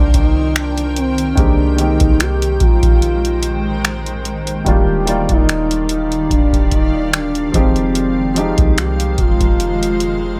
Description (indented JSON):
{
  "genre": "contemporary R&B",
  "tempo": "73 BPM",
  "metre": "4/4",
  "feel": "swing 54% on 16ths",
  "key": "Eb major",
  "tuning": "A4 = 440 Hz",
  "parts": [
    { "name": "gliding portamento lead", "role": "melody", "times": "0.0-10.4 s", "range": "C4 to G4", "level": "-21 LUFS", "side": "equal", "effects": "chorus, phaser" },
    { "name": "warm baby grand piano", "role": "accompaniment", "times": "0.0-10.4 s", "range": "Eb3 to D5", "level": "-25 LUFS", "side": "equal", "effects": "none" },
    { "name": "granular cloud pad", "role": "sustained chords", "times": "0.0-10.4 s", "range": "Eb3 to G5", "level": "-27 LUFS", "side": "equal", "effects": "built-in reverb" },
    { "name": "soft 808-style bass", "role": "bass", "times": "0.0-10.4 s", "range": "Eb1 to C2", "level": "-22 LUFS", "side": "equal", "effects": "none" },
    { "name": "booming analog drum machine", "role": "drums", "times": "0.1-10.2 s", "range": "finger snaps, hi-hat, kick drum", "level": "-17 LUFS", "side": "equal", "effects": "none" }
  ],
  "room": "little or no reverb",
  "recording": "none",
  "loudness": "-15 LUFS",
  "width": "mono",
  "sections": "0.0-10.4 A section",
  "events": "none",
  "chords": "0.0 Cm7; 1.4 Abmaj7; 4.7 Ebmaj9; 7.5 Fm7"
}